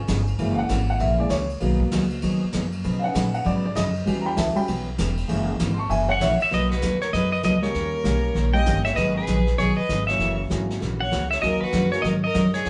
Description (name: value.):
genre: country, western swing.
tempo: 196 BPM.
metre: 4/4.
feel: swing 63% on 8ths.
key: B major.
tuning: A4 = 441 Hz.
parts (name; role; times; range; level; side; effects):
warm upright piano; accompaniment; 0.0-12.7 s; E#3 to C#6; -29 LUFS; equal; none.
upright bass; bass; 0.0-12.7 s; E1 to B2; -28 LUFS; equal; none.
picked steel-string acoustic guitar; accompaniment; 0.1-12.7 s; B2 to B4; -28 LUFS; equal; none.
vintage brush drum kit; drums; 0.1-12.7 s; brushed snare drum, hi-hat, kick drum, ride cymbal, snare drum; -35 LUFS; equal; none.
pedal steel guitar; melody; 6.1-12.7 s; B4 to G5; -27 LUFS; equal; none.
clear fiddle; second line; 6.1-12.7 s; F#4 to D#5; -32 LUFS; equal; none.
room: wet studio reverb, RT60 0.5 s.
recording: band playing live in one room, nothing above 10.5 kHz.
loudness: -23 LUFS.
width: mono.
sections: 0.0-6.5 A section; 6.5-12.7 B section.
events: upright piano solo 0.0-6.5.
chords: 0.4 F#7; 1.6 G#m7; 2.8 Badd9; 4.1 Em6; 5.3 F#7; 6.5 Bmaj7; 7.7 D#7; 9.0 G#m7; 10.2 F#7; 11.4 D#m7.